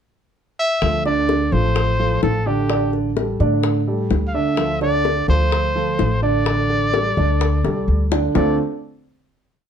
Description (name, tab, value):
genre	latin, Cuban son and guajira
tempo	128 BPM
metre	4/4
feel	straight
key	D minor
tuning	A4 = 438 Hz
part	clear trumpet	melody	0.6-8.6 s	G4 to F5	-22 LUFS	left 1 dB	none
part	dark concert grand piano	arpeggios	0.8-8.6 s	D3 to D5	-21 LUFS	right 4 dB	slapback echo
part	upright bass	bass	0.8-8.6 s	A1 to A2	-20 LUFS	left 1 dB	none
part	bongos	percussion	0.8-8.5 s	none	-25 LUFS	left 7 dB	none
room	moderate studio reverb, RT60 0.7 s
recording	dark, warm production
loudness	-16 LUFS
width	side -8 dB against mid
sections	0.0-0.8 pickup bar; 0.8-8.3 montuno (vamp); 8.3-9.7 final chord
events	drum fill 7.6-8.3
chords	0.0 N.C.; 0.8 Dm7; 2.7 A7sus4; 4.6 Dm7; 6.5 A7sus4; 8.3 Dm7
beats	0.35 | 0.82 1.29 1.76 2.23 | 2.70 3.17 3.64 4.11 | 4.58 5.05 5.52 5.99 | 6.46 6.93 7.41 7.88 | 8.35